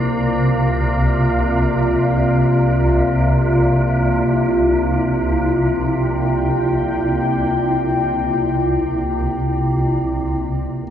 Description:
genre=dark ambient drone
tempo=free time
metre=none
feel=none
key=unclear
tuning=A4 = 440 Hz
part: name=deep dark ambient pad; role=sustained chords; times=0.0-10.9 s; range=C3 to G5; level=-18 LUFS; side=equal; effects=chorus, built-in reverb
part: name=swarming drone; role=drone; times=0.0-10.9 s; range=C2 to C3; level=-19 LUFS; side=equal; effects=built-in reverb
part: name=bronze singing bowl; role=texture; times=0.0-10.9 s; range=Bb4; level=-38 LUFS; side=left 3 dB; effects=none
room=wet spring reverb, RT60 2.5 s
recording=echo-heavy mix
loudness=-15 LUFS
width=side -10 dB against mid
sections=0.0-10.9 A section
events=none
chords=0.0 Bbsus2/C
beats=free time

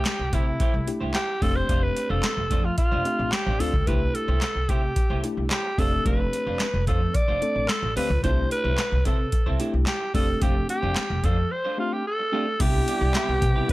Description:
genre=early-eighties boogie funk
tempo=110 BPM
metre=4/4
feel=straight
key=C major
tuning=A4 = 441 Hz
part: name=growling alto saxophone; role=melody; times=0.0-13.7 s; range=E4 to D5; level=-27 LUFS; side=equal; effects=none
part: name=electric guitar at the edge of break-up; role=riff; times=0.0-13.7 s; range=A3 to D5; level=-35 LUFS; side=right 2 dB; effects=wide subtle chorus
part: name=upright bass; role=bass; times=0.0-13.6 s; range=F1 to C3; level=-26 LUFS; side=equal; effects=none
part: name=booming analog drum machine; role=drums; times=0.1-13.7 s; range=crash cymbal, handclaps, hi-hat, kick drum, snare drum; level=-25 LUFS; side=equal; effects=gated reverb
part: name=tine electric piano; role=accompaniment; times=0.9-13.7 s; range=A3 to A4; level=-31 LUFS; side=left 1 dB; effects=medium stereo tremolo
part: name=warm analog pad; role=sustained chords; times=12.6-13.7 s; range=C3 to E4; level=-33 LUFS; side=equal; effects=chorus
room=little or no reverb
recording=none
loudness=-21 LUFS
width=side -18 dB against mid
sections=0.0-12.6 A section; 12.6-13.7 B section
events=break 11.5-12.6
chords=0.0 C6; 1.4 F6; 3.9 C6; 5.8 F6; 8.2 C6; 10.1 F6; 12.6 Cmaj7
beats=0.06 0.60 1.15 | 1.69 2.24 2.78 3.33 | 3.87 4.42 4.96 5.51 | 6.05 6.60 7.15 7.69 | 8.24 8.78 9.33 9.87 | 10.42 10.96 11.51 12.05 | 12.60 13.15 13.69

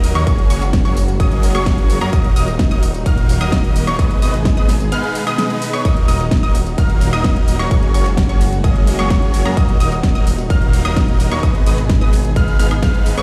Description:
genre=EDM, festival progressive house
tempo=129 BPM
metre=4/4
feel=straight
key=Eb minor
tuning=A4 = 445 Hz
part: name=dark studio string section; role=sustained chords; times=0.0-13.2 s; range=Bb2 to Ab4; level=-28 LUFS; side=equal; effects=sidechain pumping
part: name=unison pluck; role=arpeggios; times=0.0-13.2 s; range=Bb5 to F6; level=-28 LUFS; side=equal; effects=sidechain pumping, delay
part: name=big supersaw lead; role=riff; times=0.0-13.2 s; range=Gb3 to F5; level=-25 LUFS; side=equal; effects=sidechain pumping, delay
part: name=detuned saw bass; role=bass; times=0.0-13.2 s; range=Eb1 to Ab2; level=-22 LUFS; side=equal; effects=sidechain pumping
part: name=pop drum kit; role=drums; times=0.0-13.2 s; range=hi-hat, snare drum, tambourine, woodblock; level=-27 LUFS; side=equal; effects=overdrive
part: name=electronic kick drum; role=drums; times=0.3-12.9 s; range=none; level=-17 LUFS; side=equal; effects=overdrive
room=digital ambience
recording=played on a big sound system in a bare room, stone room reverb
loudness=-15 LUFS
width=mono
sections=0.0-13.2 A section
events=none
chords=0.3 Gbadd9; 2.1 Ebm; 4.0 Abm; 5.8 Ebm; 7.7 Gbadd9; 9.6 Ebm; 11.4 Abm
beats=| 0.27 0.73 1.20 1.66 | 2.13 2.59 3.06 3.52 | 3.99 4.46 4.92 5.38 | 5.85 6.32 6.78 7.25 | 7.71 8.18 8.64 9.11 | 9.57 10.04 10.50 10.97 | 11.43 11.90 12.36 12.83

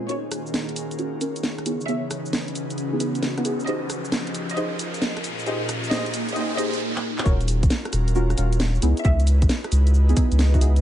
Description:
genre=UK garage, two-step garage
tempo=134 BPM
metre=4/4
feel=swing 67% on 16ths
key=unclear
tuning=A4 = 439 Hz
part: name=airy breathy pad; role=sustained chords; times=0.0-10.8 s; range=Bb2 to C5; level=-34 LUFS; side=equal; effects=chorus, sidechain pumping
part: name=granular cloud pad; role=texture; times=0.0-10.8 s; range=Bb3 to Eb5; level=-32 LUFS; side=equal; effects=built-in reverb, sidechain pumping
part: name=clear studio violin section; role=melody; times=0.1-9.2 s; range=Db5 to Fb5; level=-32 LUFS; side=equal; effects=tape echo
part: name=deep mellow chord stab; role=stabs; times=0.1-10.8 s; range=Cb4 to C5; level=-28 LUFS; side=right 1 dB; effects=chorus, tape echo
part: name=garage drum kit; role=drums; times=0.1-10.8 s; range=cabasa, handclaps, hi-hat, rim click, snare drum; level=-28 LUFS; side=equal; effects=none
part: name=riser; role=sound effects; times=1.8-6.8 s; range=none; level=-34 LUFS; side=equal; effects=none
part: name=saturated sub bass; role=bass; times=7.3-10.8 s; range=Eb1 to Db2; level=-18 LUFS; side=equal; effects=none
part: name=electronic kick drum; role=drums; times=7.3-10.6 s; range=none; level=-20 LUFS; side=equal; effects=none
room=light reverb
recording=nothing above 10.5 kHz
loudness=-20 LUFS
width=side -12 dB against mid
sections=0.1-7.3 A section; 7.3-10.8 B section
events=build-up 0.1-7.3; filter sweep on synth stab 0.1-7.3; riser 1.8-6.8; stop 6.8-7.3; drum fill 6.9-7.3; drop 7.3-10.8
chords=0.1 Ebm9; 1.7 Dbm9; 3.7 Fm9; 5.2 Bbm9; 7.3 Ebm9; 8.8 Dbm9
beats=| 0.09 0.54 0.99 1.44 | 1.88 2.33 2.78 3.23 | 3.67 4.12 4.57 5.02 | 5.46 5.91 6.36 6.81 | 7.26 7.70 8.15 8.60 | 9.05 9.49 9.94 10.39

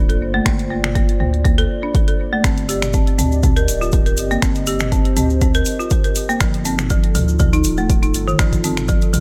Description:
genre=afro house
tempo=121 BPM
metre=4/4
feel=swing 54% on 16ths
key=unclear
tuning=A4 = 440 Hz
part: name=dark analog pad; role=sustained chords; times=0.0-9.2 s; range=Bb3 to Eb5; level=-29 LUFS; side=equal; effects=chorus, sidechain pumping
part: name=round analog bass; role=bass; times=0.0-9.2 s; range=D1 to D2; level=-24 LUFS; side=equal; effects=sidechain pumping
part: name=folk marimba with hard mallets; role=arpeggios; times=0.1-9.2 s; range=Eb3 to Bb4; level=-24 LUFS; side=equal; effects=sidechain pumping, delay
part: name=deep house drum kit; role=drums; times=0.1-9.2 s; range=finger snaps, hi-hat, toms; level=-26 LUFS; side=equal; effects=none
part: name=electronic kick drum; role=drums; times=0.5-9.0 s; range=none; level=-20 LUFS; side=equal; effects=none
part: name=tube shaker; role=percussion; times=2.4-9.2 s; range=none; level=-32 LUFS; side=equal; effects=none
room=little or no reverb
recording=none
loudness=-17 LUFS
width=mono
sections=0.0-9.2 A section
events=none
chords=0.0 Gm9; 2.4 Cm7; 6.4 F7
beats=| 0.46 0.95 1.45 1.95 | 2.44 2.94 3.43 3.93 | 4.42 4.92 5.42 5.91 | 6.41 6.90 7.40 7.89 | 8.39 8.89

